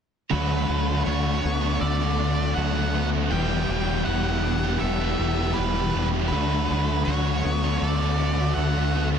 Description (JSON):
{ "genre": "rock", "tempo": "80 BPM", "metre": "4/4", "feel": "straight", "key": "D major", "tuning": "A4 = 440 Hz", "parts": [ { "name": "octave-fuzz lead guitar", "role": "melody", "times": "0.3-9.1 s", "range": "B4 to G5", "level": "-30 LUFS", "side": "right 2 dB", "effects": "distortion, analog delay" }, { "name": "string machine, violins", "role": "sustained chords", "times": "0.3-9.2 s", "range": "G4 to B5", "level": "-36 LUFS", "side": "equal", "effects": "ensemble chorus" }, { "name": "twelve-string electric guitar", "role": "arpeggios", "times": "0.3-9.2 s", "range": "F#3 to A4", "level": "-35 LUFS", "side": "right 4 dB", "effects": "none" }, { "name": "distorted electric guitar", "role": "riff", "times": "0.3-9.2 s", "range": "D3 to G4", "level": "-30 LUFS", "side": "equal", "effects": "distortion" }, { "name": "overdriven electric guitar", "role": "riff", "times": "0.3-9.2 s", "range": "E2 to G4", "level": "-30 LUFS", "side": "right 11 dB", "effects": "reverse reverb" }, { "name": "overdriven semi-hollow guitar", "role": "riff", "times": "0.3-9.2 s", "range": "E2 to G4", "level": "-29 LUFS", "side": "left 11 dB", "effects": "wide subtle chorus" }, { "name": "growling fingered electric bass", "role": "bass", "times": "0.3-9.2 s", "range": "E1 to D2", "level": "-26 LUFS", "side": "equal", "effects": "overdrive" } ], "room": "light reverb", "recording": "dense, heavily limited modern master", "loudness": "-21 LUFS", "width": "side -7 dB against mid", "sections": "0.3-9.2 A section", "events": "none", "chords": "0.3 D6; 3.3 Em11; 6.3 D6", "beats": "| 0.32 1.07 1.82 2.57 | 3.32 4.07 4.82 5.57 | 6.32 7.07 7.82 8.57" }